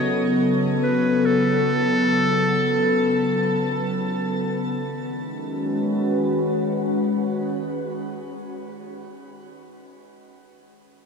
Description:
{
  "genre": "ambient",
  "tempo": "free time",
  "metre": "none",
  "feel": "none",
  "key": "B mixolydian",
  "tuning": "A4 = 443 Hz",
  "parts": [
    { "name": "bright clarinet", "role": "melody", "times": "0.0-3.9 s", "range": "A4 to C#5", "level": "-25 LUFS", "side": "equal", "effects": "ping-pong delay" },
    { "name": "warbly tape-like pad", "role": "sustained chords", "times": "0.0-9.0 s", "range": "C#3 to B4", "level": "-22 LUFS", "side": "left 1 dB", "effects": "chorus, built-in reverb" }
  ],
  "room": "wet shimmer reverb, RT60 6.7 s",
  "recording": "dark, warm production",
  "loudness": "-20 LUFS",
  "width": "side -5 dB against mid",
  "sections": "0.0-4.7 A section; 4.7-8.2 B section",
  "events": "none",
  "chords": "0.0 F#m7; 4.7 B"
}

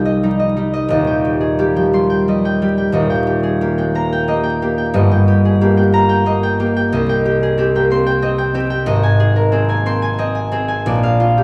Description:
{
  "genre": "classical, solo harp piece",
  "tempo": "91 BPM",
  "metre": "3/4",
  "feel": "rubato",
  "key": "unclear",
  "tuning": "A4 = 440 Hz",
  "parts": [
    { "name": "concert harp", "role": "solo", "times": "0.0-11.4 s", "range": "Eb1 to Eb6", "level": "-16 LUFS", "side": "equal", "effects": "none" }
  ],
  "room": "wet recital hall reverb, RT60 1.4 s",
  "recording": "heard from further back in the room, vinyl crackle",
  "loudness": "-16 LUFS",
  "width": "mono",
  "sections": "0.0-11.4 A section",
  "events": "none",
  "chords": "0.0 Cm; 0.9 Cm/Eb; 2.9 Eb; 4.9 Eb/G; 6.9 Cm; 8.9 Ab; 10.8 Bb"
}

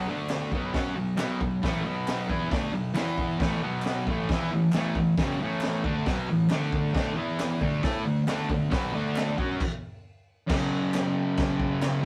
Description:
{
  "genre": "garage rock duo or trio",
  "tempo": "135 BPM",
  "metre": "4/4",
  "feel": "straight",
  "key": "F# minor",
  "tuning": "A4 = 441 Hz",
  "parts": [
    { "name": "fuzz guitar", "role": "riff", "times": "0.0-12.1 s", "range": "F#2 to A4", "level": "-29 LUFS", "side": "equal", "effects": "distortion" },
    { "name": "raw garage drum kit", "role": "drums", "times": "0.3-11.9 s", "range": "crash cymbal, hi-hat, kick drum, snare drum", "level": "-33 LUFS", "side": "equal", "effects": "none" },
    { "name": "group handclap", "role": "percussion", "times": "0.3-11.9 s", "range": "none", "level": "-44 LUFS", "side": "equal", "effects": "none" }
  ],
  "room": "wet studio reverb, RT60 0.5 s",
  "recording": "rough rehearsal-room recording",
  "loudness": "-27 LUFS",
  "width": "mono",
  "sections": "0.0-10.5 A section; 10.5-12.1 B section",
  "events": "stop 9.6-10.5",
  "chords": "0.1 D5; 0.5 B5; 3.0 E5; 3.4 A5; 3.6 B5; 4.1 A5; 6.5 D5; 7.2 E5; 7.6 D5; 10.5 F#5"
}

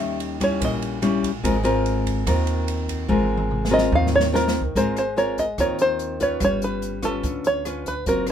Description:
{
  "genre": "bossa nova",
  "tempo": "145 BPM",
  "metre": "4/4",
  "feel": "straight",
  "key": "Ab major",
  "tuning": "A4 = 445 Hz",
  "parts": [
    { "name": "open-back banjo", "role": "melody", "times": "0.0-0.8, 3.7-8.3 s", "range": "A4 to F5", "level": "-22 LUFS", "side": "right 1 dB", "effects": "none" },
    { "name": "nylon-string guitar", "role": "accompaniment", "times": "0.0-8.3 s", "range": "Bb2 to Cb5", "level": "-23 LUFS", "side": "left 2 dB", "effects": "none" },
    { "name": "upright bass", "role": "bass", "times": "0.0-8.3 s", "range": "Gb1 to Eb2", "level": "-27 LUFS", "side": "right 1 dB", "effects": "none" },
    { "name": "open jazz drum kit", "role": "drums", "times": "0.2-8.3 s", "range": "hi-hat, kick drum, ride cymbal, rim click, snare drum, toms", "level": "-29 LUFS", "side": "right 1 dB", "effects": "none" }
  ],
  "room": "light reverb",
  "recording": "minimal, uncompressed stereo recording",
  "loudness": "-20 LUFS",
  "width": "side -9 dB against mid",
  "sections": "0.0-4.7 A section; 4.7-8.3 B section",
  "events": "five-string banjo solo 0.0-4.7; drum fill 3.1-4.7",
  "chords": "0.0 Eb7b9; 1.4 Ab69; 6.4 G7#11"
}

